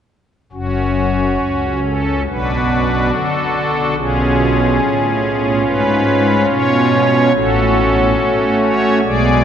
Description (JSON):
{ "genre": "classical, chorale-style piece for pipe organ", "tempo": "71 BPM", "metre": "4/4", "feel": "rubato", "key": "F# minor", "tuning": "A4 = 440 Hz", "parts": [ { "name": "pipe organ, strings celeste", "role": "solo", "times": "0.5-9.4 s", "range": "F#1 to D5", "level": "-13 LUFS", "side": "equal", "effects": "none" } ], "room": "wet cathedral reverb, RT60 5.9 s", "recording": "nothing above 10.8 kHz", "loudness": "-13 LUFS", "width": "side -9 dB against mid", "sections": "0.5-9.4 A section", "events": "none", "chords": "0.5 F#5; 2.3 Bm; 4.0 C#7/B; 7.3 F#m/A" }